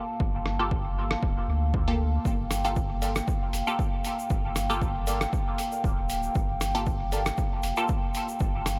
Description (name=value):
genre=dub techno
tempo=117 BPM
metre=4/4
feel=swing 54% on 16ths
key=G minor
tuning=A4 = 440 Hz
part: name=dark analog pad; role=sustained chords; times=0.0-8.8 s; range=Bb3 to A5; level=-35 LUFS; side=equal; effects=chorus, sidechain pumping
part: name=pure sine sub bass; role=bass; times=0.2-8.8 s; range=D1 to D2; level=-33 LUFS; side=equal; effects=sidechain pumping
part: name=electronic kick drum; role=drums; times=0.2-8.5 s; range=none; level=-31 LUFS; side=equal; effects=none
part: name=lo-fi sampler-style drum kit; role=drums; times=0.5-8.8 s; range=hi-hat, rim click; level=-36 LUFS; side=equal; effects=dub echo
part: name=filtered dub chord stab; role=stabs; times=0.6-7.8 s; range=Bb3 to A4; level=-36 LUFS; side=equal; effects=chorus, phaser, sidechain pumping, dub echo
part: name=egg shaker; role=percussion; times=2.3-8.8 s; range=none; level=-44 LUFS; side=equal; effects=none
part: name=warbly lo-fi synth keys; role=riff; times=3.0-7.2 s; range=A4 to F5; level=-44 LUFS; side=equal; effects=none
room=light reverb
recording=none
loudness=-28 LUFS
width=mono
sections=0.0-8.8 A section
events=none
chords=0.0 Gm9